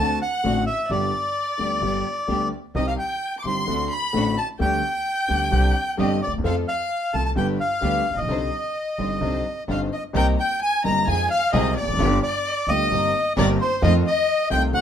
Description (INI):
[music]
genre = tango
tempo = 130 BPM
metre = 4/4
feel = rubato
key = C harmonic minor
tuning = A4 = 438 Hz
[part]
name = bandoneon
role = melody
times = 0.0-14.8 s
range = C5 to D6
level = -24 LUFS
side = right 1 dB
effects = none
[part]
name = warm violin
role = second line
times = 0.0-14.8 s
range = C5 to D6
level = -28 LUFS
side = left 6 dB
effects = none
[part]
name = warm concert grand piano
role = accompaniment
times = 0.0-14.8 s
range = G1 to A4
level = -25 LUFS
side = left 1 dB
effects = none
[part]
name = warm studio string section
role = stabs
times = 0.0-14.8 s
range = A3 to C5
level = -32 LUFS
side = right 1 dB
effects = none
[part]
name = upright bass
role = bass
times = 0.0-14.8 s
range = E1 to F2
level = -26 LUFS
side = right 1 dB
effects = none
[sound]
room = light reverb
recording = minimal, uncompressed stereo recording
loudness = -20 LUFS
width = side -9 dB against mid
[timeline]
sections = 0.0-10.1 A section; 10.1-14.8 A section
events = none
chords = 0.0 D7; 0.9 G; 2.8 Cm; 3.7 D7; 4.6 G/D; 5.5 Csus2; 6.4 F; 7.4 G; 8.3 Cmadd9; 10.1 Cm7; 11.1 Fm7; 12.0 G7; 12.9 Cm7/G; 13.8 F7